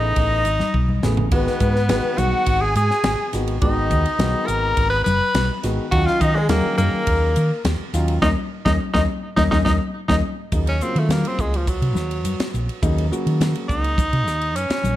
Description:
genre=electric jazz fusion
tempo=104 BPM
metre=4/4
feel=straight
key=Eb dorian from 10.5 s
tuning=A4 = 440 Hz
part: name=bright tenor saxophone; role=melody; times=0.0-15.0 s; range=F3 to B4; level=-23 LUFS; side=right 1 dB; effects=tape echo
part: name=breathy silver concert flute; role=second line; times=0.0-10.2 s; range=G#4 to B5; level=-26 LUFS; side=left 4 dB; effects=none
part: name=warm concert grand piano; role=accompaniment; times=0.0-13.9 s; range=C#3 to G#4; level=-27 LUFS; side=left 1 dB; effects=none
part: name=hollow-body short-scale fingered electric bass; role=bass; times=0.0-15.0 s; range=F#1 to D#3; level=-21 LUFS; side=equal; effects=none
part: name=crisp fusion drum kit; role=drums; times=0.2-15.0 s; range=hi-hat, kick drum, ride cymbal, snare drum, toms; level=-25 LUFS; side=equal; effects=none
part: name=congas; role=percussion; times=0.2-15.0 s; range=none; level=-26 LUFS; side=left 4 dB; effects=none
room=light reverb, studio reverb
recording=none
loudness=-17 LUFS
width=side -14 dB against mid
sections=0.0-10.5 A section; 10.5-15.0 B section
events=drum fill 0.6-1.3, 9.4-10.5; band accent 8.2-10.5; tenor saxophone solo 10.5-15.0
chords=0.0 Amaj9; 1.3 G#m7; 5.9 D#m9; 10.5 Ebm7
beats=0.17 0.74 | 1.32 1.90 2.47 3.05 | 3.62 4.20 4.77 5.35 | 5.92 6.50 7.07 7.65 | 8.22 8.80 9.37 9.95 | 10.52 11.10 11.68 12.25 | 12.83 13.40 13.98 14.56

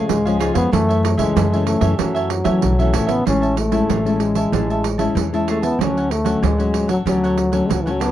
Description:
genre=samba and choro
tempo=95 BPM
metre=4/4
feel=straight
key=F# minor, A major from 3.3 s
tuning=A4 = 440 Hz
part: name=warm trombone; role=melody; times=0.0-8.1 s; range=E3 to C#4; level=-20 LUFS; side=left 1 dB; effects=none
part: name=cavaquinho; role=accompaniment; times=0.0-8.1 s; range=D4 to A5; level=-26 LUFS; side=right 4 dB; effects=none
part: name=nylon-string guitar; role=accompaniment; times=0.0-8.1 s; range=F#2 to E4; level=-22 LUFS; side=left 5 dB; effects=none
part: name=upright bass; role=bass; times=0.0-8.1 s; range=A1 to F#3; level=-22 LUFS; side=equal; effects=none
part: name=pandeiro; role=percussion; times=0.1-8.1 s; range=none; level=-24 LUFS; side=right 12 dB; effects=none
room=light reverb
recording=dry, close 1970s-style studio recording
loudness=-16 LUFS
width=side -12 dB against mid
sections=0.0-3.3 A section; 3.3-8.1 B section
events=none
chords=0.0 C#; 0.7 F#m7; 3.3 Amaj7; 5.8 Dmaj7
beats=0.10 | 0.73 1.36 2.00 2.63 | 3.26 3.90 4.53 5.16 | 5.80 6.43 7.06 7.70

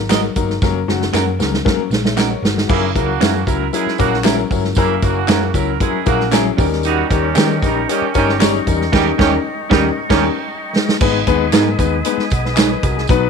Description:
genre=uptempo 1960s-style soul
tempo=115 BPM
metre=4/4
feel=straight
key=G# minor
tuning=A4 = 441 Hz
part: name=hollow-body short-scale picked electric bass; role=bass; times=0.0-13.3 s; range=F#1 to D#3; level=-22 LUFS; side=right 1 dB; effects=none
part: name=warm grand piano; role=accompaniment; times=0.1-13.3 s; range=F#3 to F#5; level=-19 LUFS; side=left 13 dB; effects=none
part: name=electric guitar through a small old amp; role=stabs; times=0.1-12.7 s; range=C#4 to D#5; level=-22 LUFS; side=right 14 dB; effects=none
part: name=swinging big-band drum kit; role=drums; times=0.1-13.2 s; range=crash cymbal, hi-hat, kick drum, snare drum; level=-18 LUFS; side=right 2 dB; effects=none
part: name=handclaps and tambourine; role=percussion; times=0.1-13.2 s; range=none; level=-28 LUFS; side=left 3 dB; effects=none
part: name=clear horn section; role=second line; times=2.7-10.2 s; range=C#3 to A#4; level=-21 LUFS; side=right 15 dB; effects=none
part: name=tonewheel organ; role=sustained chords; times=6.8-13.3 s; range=D#5 to D#6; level=-25 LUFS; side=right 1 dB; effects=slow rotary speaker, overdrive
room=light reverb, small room ambience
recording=1960s-style stereo with parts hard left and right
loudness=-14 LUFS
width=side -6 dB against mid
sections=0.0-2.7 A section; 2.7-11.0 B section; 11.0-13.3 C section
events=drum fill 0.6-2.7, 10.5-11.0; band accent 8.9-11.0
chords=0.0 D#m; 0.6 F#; 2.7 F#7; 6.6 D#7; 11.0 G#m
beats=0.10 | 0.61 1.13 1.65 2.17 | 2.69 3.21 3.73 4.25 | 4.76 5.29 5.80 6.33 | 6.85 7.37 7.89 8.41 | 8.93 9.45 9.97 10.49 | 11.01 11.53 12.05 12.57 | 13.09

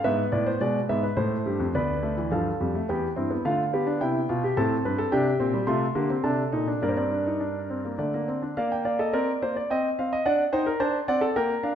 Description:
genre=classical, baroque-style 4-part fugue for grand piano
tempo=107 BPM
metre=3/4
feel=straight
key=G minor from 5.1 s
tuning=A4 = 440 Hz
part: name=warm concert grand piano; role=solo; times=0.0-11.8 s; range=D2 to C6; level=-23 LUFS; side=equal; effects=none
room=moderate recital hall reverb, RT60 1.4 s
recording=minimal, uncompressed stereo recording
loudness=-23 LUFS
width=side -9 dB against mid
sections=0.0-1.7 A section; 1.7-8.6 B section; 8.6-11.8 C section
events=none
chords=0.0 E7/G#; 1.2 Am; 1.7 Dm; 2.9 C/E; 3.4 Bdim/D; 4.6 Am; 5.1 C5; 6.2 Adim/C; 6.8 Gm; 8.0 D5; 8.6 Gm/Bb (rootless); 9.7 Cm; 10.3 D7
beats=| 0.05 0.61 1.17 | 1.74 2.31 2.88 | 3.44 4.00 4.56 | 5.11 5.67 6.23 | 6.82 7.40 7.99 | 8.57 9.13 9.70 | 10.25 10.80 11.36

